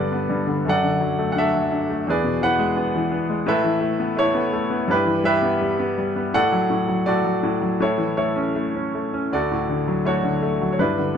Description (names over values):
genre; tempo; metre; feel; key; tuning
classical, lyrical solo piano; 83 BPM; 4/4; rubato; D major; A4 = 441 Hz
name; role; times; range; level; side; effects
bright grand piano; solo; 0.0-11.2 s; D2 to F#5; -19 LUFS; equal; none
room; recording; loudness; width
light reverb; dark, warm production; -19 LUFS; side -7 dB against mid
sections
0.0-11.2 A section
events
none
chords
0.0 Gadd9; 0.7 D/F#; 2.1 E; 3.5 Asus2; 4.9 Em/G; 6.3 D/A; 7.8 A; 9.3 D